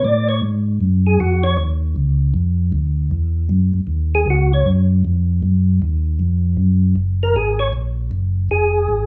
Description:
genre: soul jazz organ trio.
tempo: 156 BPM.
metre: 4/4.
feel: swing 64% on 8ths.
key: unclear.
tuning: A4 = 442 Hz.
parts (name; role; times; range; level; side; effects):
percussive tonewheel organ; melody; 0.0-1.6, 4.1-4.7, 7.2-9.1 s; Gb4 to D5; -21 LUFS; equal; slow rotary speaker, chorus vibrato, plate reverb.
mellow tonewheel organ; bass; 0.0-9.1 s; F1 to A2; -18 LUFS; equal; chorus vibrato, slow rotary speaker.
room: light reverb.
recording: studio ambience.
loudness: -18 LUFS.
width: mono.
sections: 0.0-7.0 A section; 7.0-9.1 A section.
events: tonewheel organ solo 0.0-9.1.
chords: 0.0 Db5; 0.8 Gb5; 2.3 Dm; 3.1 Esus2; 3.9 Ebm7; 7.0 F#add9; 8.5 Fm.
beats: 0.03 0.42 | 0.80 1.19 1.57 1.96 | 2.34 2.73 3.11 3.50 | 3.88 4.27 4.66 5.04 | 5.43 5.81 6.20 6.58 | 6.96 7.35 7.74 8.12 | 8.51 8.89.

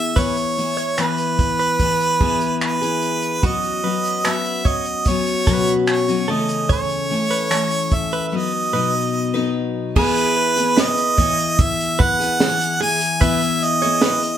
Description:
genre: acoustic pop.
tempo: 74 BPM.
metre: 4/4.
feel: straight.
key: E major.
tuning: A4 = 440 Hz.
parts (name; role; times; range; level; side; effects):
clear harmonica; melody; 0.0-14.4 s; B4 to G#5; -20 LUFS; right 2 dB; none.
picked steel-string acoustic guitar; accompaniment; 0.0-14.4 s; B2 to B4; -22 LUFS; left 5 dB; none.
direct-recorded clean electric guitar; arpeggios; 0.2-14.2 s; F#4 to C#5; -27 LUFS; right 3 dB; none.
compact cocktail drum kit; drums; 0.2-14.4 s; crash cymbal, finger snaps, kick drum, shaker, snare drum; -20 LUFS; right 1 dB; none.
room: moderate studio reverb, RT60 0.8 s.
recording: band playing live in one room.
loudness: -16 LUFS.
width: side -10 dB against mid.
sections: 0.0-10.0 A section; 10.0-14.4 B section.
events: none.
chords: 0.0 E; 3.4 Bsus2; 6.3 A/C#; 8.3 B; 10.0 E.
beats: | 0.17 0.99 1.80 2.62 | 3.44 4.25 5.07 5.89 | 6.70 7.52 8.33 9.15 | 9.96 10.77 11.59 12.40 | 13.21 14.02.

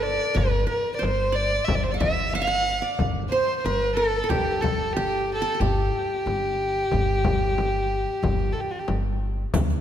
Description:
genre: Arabic maqam ensemble.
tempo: 92 BPM.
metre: 4/4.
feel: straight.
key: G maqam rast.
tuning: A4 = 439 Hz.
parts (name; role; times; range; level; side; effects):
warm violin; melody; 0.0-8.9 s; F#4-47c to F#5-46c; -24 LUFS; equal; none.
qanun; second line; 0.0-8.5 s; G4 to F#5-50c; -29 LUFS; right 4 dB; none.
upright bass; bass; 0.0-9.8 s; G1 to D2; -28 LUFS; equal; none.
frame drum; percussion; 0.4-9.7 s; none; -29 LUFS; left 3 dB; none.
riq; percussion; 9.5-9.8 s; none; -32 LUFS; right 3 dB; none.
room: moderate concert hall reverb, RT60 2.2 s.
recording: none.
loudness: -22 LUFS.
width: side -10 dB against mid.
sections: 0.0-9.5 A section.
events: none.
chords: none.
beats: 0.36 1.01 | 1.67 2.33 2.98 3.64 | 4.30 4.95 5.61 6.26 | 6.92 7.57 8.23 8.88 | 9.54.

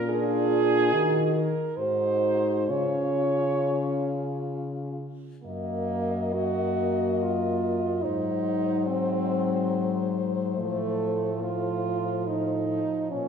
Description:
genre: classical, lyrical piece for horn quartet.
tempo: 64-74 BPM.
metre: 3/4.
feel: rubato.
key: unclear.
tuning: A4 = 443 Hz.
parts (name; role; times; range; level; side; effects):
mellow French horn; second line; 0.0-13.3 s; A3 to Db5; -27 LUFS; right 4 dB; none.
mellow French horn; bass; 0.0-13.3 s; Gb2 to Eb3; -31 LUFS; left 1 dB; none.
mellow French horn; melody; 0.1-13.3 s; F4 to Eb5; -32 LUFS; left 6 dB; none.
mellow French horn; accompaniment; 0.1-13.3 s; F3 to Eb4; -32 LUFS; left 5 dB; none.
room: wet recital hall reverb, RT60 1.7 s.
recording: recorded in a church or concert hall.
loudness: -24 LUFS.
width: side -6 dB against mid.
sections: 0.0-5.5 A section; 5.5-13.3 B section.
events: none.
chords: 0.1 Bb7; 0.9 Ebm; 1.8 Ab7; 2.7 Db; 5.5 Ebm/Gb; 8.1 Ab7; 10.6 F7/A.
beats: | 0.07 0.92 1.79 | 2.69 3.62 4.54 | 5.45 6.36 7.22 | 8.05 8.89 9.73 | 10.57 11.44 12.28 | 13.11.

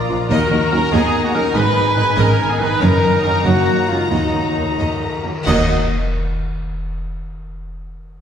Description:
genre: cinematic, heroic adventure film score.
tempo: 88-97 BPM (dotted quarters).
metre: 6/8.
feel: straight.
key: Eb minor.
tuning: A4 = 440 Hz.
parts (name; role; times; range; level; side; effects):
rich symphonic violin section; melody; 0.0-5.7 s; Gb5 to Bb5; -26 LUFS; left 3 dB; none.
mellow clarinet; second line; 0.0-5.7 s; Gb3 to Eb5; -27 LUFS; left 1 dB; none.
small flute group; second line; 0.0-5.7 s; Eb5 to Cb6; -27 LUFS; equal; none.
warm oboe; second line; 0.0-5.7 s; Eb4 to Eb5; -27 LUFS; equal; none.
warm symphonic violin section; second line; 0.0-5.7 s; F4 to Gb5; -30 LUFS; left 3 dB; none.
warm symphonic viola section; accompaniment; 0.0-5.7 s; Eb4 to Eb5; -28 LUFS; right 2 dB; none.
mellow French horn section; sustained chords; 0.0-5.6 s; Eb4 to Cb5; -23 LUFS; left 2 dB; none.
concert harp; arpeggios; 0.0-5.7 s; Gb2 to Gb5; -27 LUFS; left 2 dB; none.
dark trumpet section; stabs; 0.0-5.7 s; Eb4 to Eb5; -23 LUFS; right 2 dB; none.
warm trombone section; sustained chords; 0.1-5.7 s; Eb3 to Eb4; -29 LUFS; right 3 dB; none.
dark symphonic cello section; bass; 0.1-5.7 s; Eb2 to Bb2; -21 LUFS; right 1 dB; none.
rich symphonic double bass section; bass; 0.1-5.7 s; Gb1 to Eb2; -22 LUFS; right 2 dB; none.
cymbal swell, clash cymbals and concert bass drum; percussion; 2.8-6.3 s; none; -25 LUFS; equal; none.
room: wet scoring stage reverb, RT60 1.4 s.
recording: heard from further back in the room.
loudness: -14 LUFS.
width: side -8 dB against mid.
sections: 0.0-5.5 A section; 5.5-6.8 B section.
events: slowing down 2.2-5.5; band accent 5.5-5.9.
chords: 0.3 Ebm; 1.5 Abm; 2.8 Gb; 4.1 Ebm.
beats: | 0.29 0.92 | 1.55 2.17 | 2.81 3.45 | 4.11 4.79 | 5.47 6.14.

